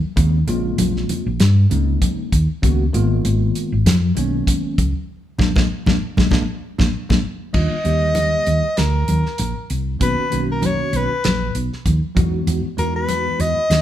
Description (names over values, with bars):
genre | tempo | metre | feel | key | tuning
electric jazz fusion | 98 BPM | 4/4 | swing 56% on 16ths | unclear | A4 = 444 Hz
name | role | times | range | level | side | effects
bell-like tine electric piano | accompaniment | 0.2-13.6 s | Db3 to G4 | -24 LUFS | equal | medium stereo tremolo
hollow-body short-scale fingered electric bass | bass | 0.2-13.8 s | Ab1 to G2 | -19 LUFS | equal | none
damped 70s drum kit | drums | 0.2-13.8 s | crash cymbal, hi-hat, kick drum, snare drum | -21 LUFS | equal | none
congas | percussion | 0.2-13.8 s | none | -24 LUFS | left 1 dB | none
warm soprano saxophone | melody | 7.5-13.8 s | A#4 to Eb5 | -21 LUFS | left 1 dB | none
room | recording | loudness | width
moderate large studio reverb, RT60 1.1 s | band playing live in one room | -16 LUFS | side -11 dB against mid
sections
0.0-7.5 A section; 7.5-13.8 B section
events
band accent 5.1-7.5; tine electric piano fill 6.3-7.5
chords
0.0 Eb13sus4; 2.6 Db7sus2; 5.1 Bb7; 7.5 Ebmaj7; 10.0 Bmaj9; 12.2 Emaj9